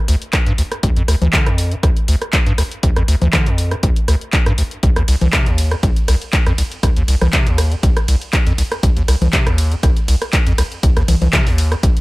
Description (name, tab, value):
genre	acid house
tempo	120 BPM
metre	4/4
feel	swing 53% on 16ths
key	unclear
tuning	A4 = 440 Hz
part	acid bass, square	riff	0.1-11.9 s	C2 to D3	-16 LUFS	equal	overdrive, sidechain pumping
part	punchy analog drum machine	drums	0.1-12.0 s	congas, handclaps, hi-hat, ride cymbal, rim click	-20 LUFS	equal	none
part	electronic kick drum	drums	0.3-11.9 s	none	-16 LUFS	equal	none
room	little or no reverb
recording	none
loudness	-13 LUFS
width	side -21 dB against mid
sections	0.0-12.0 A section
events	none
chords	none